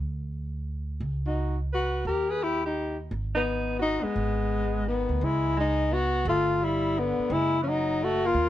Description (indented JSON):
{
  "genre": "jazz, small-group swing and bop",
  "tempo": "172 BPM",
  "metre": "3/4",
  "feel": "swing 65% on 8ths",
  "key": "G# minor",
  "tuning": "A4 = 439 Hz",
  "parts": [
    { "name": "upright bass", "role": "bass", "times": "0.0-8.5 s", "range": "F#1 to D#2", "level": "-30 LUFS", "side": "right 1 dB", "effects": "none" },
    { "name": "breathy tenor saxophone", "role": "melody", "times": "1.3-8.5 s", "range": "G#3 to G#4", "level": "-26 LUFS", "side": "left 3 dB", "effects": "plate reverb" },
    { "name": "breathy alto saxophone", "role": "second line", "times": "1.3-8.5 s", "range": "D3 to B4", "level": "-32 LUFS", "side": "right 4 dB", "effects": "none" }
  ],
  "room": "light reverb",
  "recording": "none",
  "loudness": "-25 LUFS",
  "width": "side -13 dB against mid",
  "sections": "0.0-5.2 A section; 5.2-8.5 B section",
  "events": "none",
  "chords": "0.0 N.C.; 1.0 C#9sus4; 2.1 D#; 3.1 G#m; 5.2 C#m9; 6.3 G9; 7.3 F#m13"
}